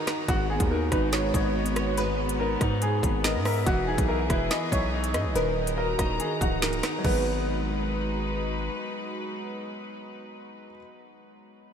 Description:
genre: hip hop, drill.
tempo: 142 BPM.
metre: 4/4.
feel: half-time.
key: G# minor.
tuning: A4 = 441 Hz.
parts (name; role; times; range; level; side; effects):
clear upright piano; melody; 0.0-8.3 s; F#4 to C#5; -31 LUFS; right 1 dB; lush chorus, diffuse ambient delay.
glassy wavetable pluck; second line; 0.0-8.3 s; A#4 to E5; -35 LUFS; left 1 dB; chorus, diffuse ambient delay.
warm concert grand piano; accompaniment; 0.0-11.7 s; G#2 to D#5; -32 LUFS; left 2 dB; lush chorus.
warm studio string section; sustained chords; 0.0-10.7 s; D#3 to A#5; -34 LUFS; left 1 dB; none.
drill drum kit; drums; 0.1-7.1 s; crash cymbal, hi-hat, kick drum, rim click, snare drum; -30 LUFS; equal; none.
distorted 808-style bass; bass; 0.3-8.7 s; C#1 to G#2; -30 LUFS; equal; distortion.
room: moderate huge ambient reverb, RT60 7.7 s.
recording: dreamy mix soaked in reverb.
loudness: -24 LUFS.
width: side -8 dB against mid.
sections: 0.0-7.0 A section; 7.0-10.4 B section.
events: break 0.0.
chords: 0.3 G#m7; 3.7 Emaj7; 5.4 D#m; 7.0 G#m7.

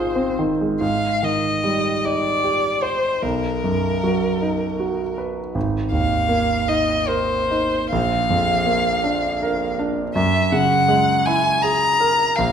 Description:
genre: classical, impressionist duo for violin and grand piano.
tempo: 44-55 BPM (dotted quarters).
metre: 6/8.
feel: rubato.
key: unclear.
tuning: A4 = 441 Hz.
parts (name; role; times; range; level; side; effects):
clear violin; melody; 0.0-12.5 s; A#4 to Bb5; -20 LUFS; left 1 dB; none.
clear concert grand piano; accompaniment; 0.0-12.5 s; Ab1 to C5; -21 LUFS; right 2 dB; none.
room: moderate scoring stage reverb, RT60 1.6 s.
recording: minimal, uncompressed stereo recording.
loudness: -18 LUFS.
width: side -8 dB against mid.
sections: 0.8-12.5 A section.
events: none.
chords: 0.0 Ab6; 0.8 Abmaj7; 3.2 Bmaj7; 5.6 Ab69; 7.9 Bb; 10.2 Gb9.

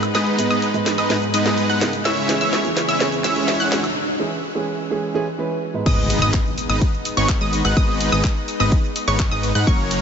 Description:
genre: EDM, festival progressive house.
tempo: 126 BPM.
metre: 4/4.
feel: straight.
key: G# minor.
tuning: A4 = 440 Hz.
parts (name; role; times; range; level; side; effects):
lush unison pad; sustained chords; 0.0-10.0 s; G#2 to C#5; -28 LUFS; equal; chorus, sidechain pumping.
house drum kit; drums; 0.0-10.0 s; crash cymbal, handclaps, hi-hat, shaker, snare drum, woodblock; -26 LUFS; equal; none.
riser and impact; sound effects; 0.3-7.8 s; none; -30 LUFS; equal; none.
wide unison pluck; arpeggios; 0.1-10.0 s; C#6 to F#6; -25 LUFS; equal; sidechain pumping, ping-pong delay.
supersaw chords; riff; 0.1-10.0 s; F#3 to F#5; -23 LUFS; equal; sidechain pumping, low-pass filter, ping-pong delay.
dark grand piano; accompaniment; 0.4-6.1 s; G#2 to B4; -25 LUFS; right 3 dB; sidechain pumping, ping-pong delay.
fat analog bass; bass; 5.9-10.0 s; F#1 to G#2; -22 LUFS; equal; sidechain pumping.
electronic kick drum; drums; 5.9-9.8 s; none; -19 LUFS; equal; none.
room: moderate huge ambient reverb, RT60 7.3 s.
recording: nothing above 7.7 kHz.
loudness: -17 LUFS.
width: side -7 dB against mid.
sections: 0.0-5.9 A section; 5.9-10.0 B section.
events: build-up 0.0-5.9; drum fill 0.0-4.0; riser 0.3-4.0; break 4.0-5.9; drop 5.9-10.0; impact 5.9-7.8.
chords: 0.0 G#m; 2.1 C#m; 5.9 G#m.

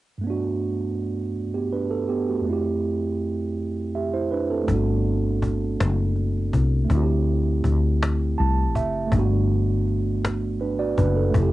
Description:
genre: slow six-eight R&B.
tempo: 54 BPM (dotted quarters).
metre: 6/8.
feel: straight.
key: G major.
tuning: A4 = 441 Hz.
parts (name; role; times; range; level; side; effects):
mellow tine electric piano; accompaniment; 0.2-11.5 s; F2 to A5; -24 LUFS; right 4 dB; none.
woody fretless electric bass; bass; 4.7-11.5 s; F1 to D2; -22 LUFS; left 1 dB; none.
cajon; drums; 4.7-11.5 s; none; -26 LUFS; left 1 dB; cassette tape.
room: light reverb.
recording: home recording on cassette, nothing above 11.0 kHz.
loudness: -21 LUFS.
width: side -16 dB against mid.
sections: 0.2-9.1 A section; 9.1-11.5 B section.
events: tine electric piano fill 8.0-9.1.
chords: 0.2 Gmaj9; 2.5 Fmaj9; 4.7 Gmaj9; 6.9 D9sus4; 9.1 Gmaj9.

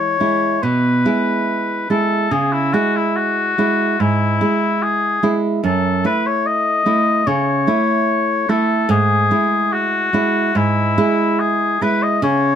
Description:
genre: romantic duo for oboe and classical guitar.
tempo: 72 BPM.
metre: 4/4.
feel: rubato.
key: E major.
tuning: A4 = 440 Hz.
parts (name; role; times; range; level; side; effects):
warm oboe; melody; 0.0-12.6 s; E4 to D#5; -18 LUFS; left 4 dB; none.
nylon-string guitar; accompaniment; 0.0-12.6 s; F#2 to E4; -17 LUFS; right 3 dB; none.
room: light reverb.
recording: none.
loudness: -15 LUFS.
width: side -9 dB against mid.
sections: 0.0-12.6 A section.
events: none.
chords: 0.0 E; 2.3 C#m; 5.6 F#m7 (rootless); 8.9 E/G#.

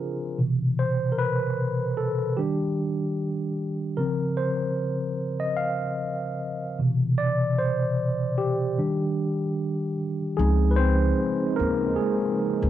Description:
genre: hip hop.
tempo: 75 BPM.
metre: 4/4.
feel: swing 59% on 16ths.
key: unclear.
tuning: A4 = 440 Hz.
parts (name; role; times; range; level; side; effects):
mellow tine electric piano; accompaniment; 0.0-12.7 s; B2 to F5; -24 LUFS; equal; slow stereo tremolo, cassette tape, low-pass filter.
warm analog pad; sustained chords; 10.4-12.7 s; Db3 to Eb4; -33 LUFS; equal; chorus, low-pass filter.
upright bass; bass; 10.4-12.7 s; Db2 to Eb2; -22 LUFS; equal; none.
room: moderate small room reverb, RT60 0.5 s.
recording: cassette tape.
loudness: -23 LUFS.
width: side -12 dB against mid.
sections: 0.0-10.4 A section; 10.4-12.7 B section.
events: tine electric piano solo 0.0-10.4, 10.4-12.7.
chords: 0.4 Cmaj7; 2.4 Ebmaj7; 4.0 Dbmaj7; 6.8 Cmaj7; 8.8 Ebmaj7; 10.4 Dbmaj9.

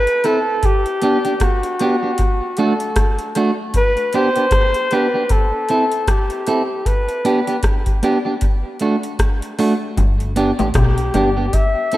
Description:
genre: roots reggae.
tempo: 77 BPM.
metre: 4/4.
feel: swing 57% on 16ths.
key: G major.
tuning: A4 = 435 Hz.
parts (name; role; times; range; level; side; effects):
warm flugelhorn; melody; 0.0-12.0 s; F#4 to E5; -19 LUFS; left 1 dB; dub echo.
booming analog drum machine; drums; 0.1-12.0 s; hi-hat, kick drum, rim click; -18 LUFS; equal; tape echo.
clean electric guitar; accompaniment; 0.2-12.0 s; A3 to A4; -20 LUFS; right 2 dB; dub echo.
semi-hollow electric guitar; riff; 10.0-11.4 s; G2 to B2; -22 LUFS; left 3 dB; ensemble chorus.
deep dub fingered electric bass; bass; 10.0-11.5 s; G1 to B1; -20 LUFS; equal; none.
room: moderate lush hall reverb, RT60 2.0 s.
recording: rough home demo mix.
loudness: -15 LUFS.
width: side -15 dB against mid.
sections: 0.0-12.0 A section.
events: none.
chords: 0.0 Am; 0.6 G; 2.2 D; 3.7 G; 5.3 Am; 6.9 G; 8.4 D; 10.0 G.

